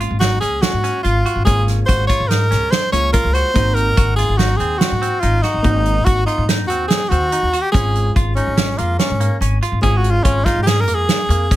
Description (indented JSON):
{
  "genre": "progressive instrumental, band music in an uneven meter",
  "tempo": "143 BPM",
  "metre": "5/4",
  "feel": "straight",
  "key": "Ab mixolydian",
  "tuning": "A4 = 439 Hz",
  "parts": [
    { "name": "hollow-body jazz guitar", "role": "accompaniment", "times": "0.0-11.6 s", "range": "Ab3 to F5", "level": "-28 LUFS", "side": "right 1 dB", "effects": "none" },
    { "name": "semi-hollow electric guitar", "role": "arpeggios", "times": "0.0-11.6 s", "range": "Bb3 to Gb4", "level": "-26 LUFS", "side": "right 2 dB", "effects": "wide subtle chorus" },
    { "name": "upright bass", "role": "bass", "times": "0.0-11.5 s", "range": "Ab1 to Ab2", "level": "-18 LUFS", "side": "equal", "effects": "none" },
    { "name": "unplugged drum kit", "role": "drums", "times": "0.0-11.6 s", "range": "hi-hat, kick drum, snare drum", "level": "-18 LUFS", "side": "right 1 dB", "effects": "none" },
    { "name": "clear tenor saxophone", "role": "melody", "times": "0.2-11.6 s", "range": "Db4 to Db5", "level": "-19 LUFS", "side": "equal", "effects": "none" }
  ],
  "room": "light reverb",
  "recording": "none",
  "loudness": "-14 LUFS",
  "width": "side -14 dB against mid",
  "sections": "0.0-11.6 A section",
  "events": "tenor saxophone solo 0.0-11.6",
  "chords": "0.0 Gbmaj7/Ab; 3.6 Ab7; 7.7 Bbm7/Ab",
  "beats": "0.21 0.63 1.05 | 1.47 1.88 2.30 2.72 3.14 | 3.56 3.97 4.39 4.81 5.23 | 5.65 6.06 6.48 6.90 7.32 | 7.74 8.16 8.58 8.99 9.41 | 9.83 10.25 10.67 11.09 11.51"
}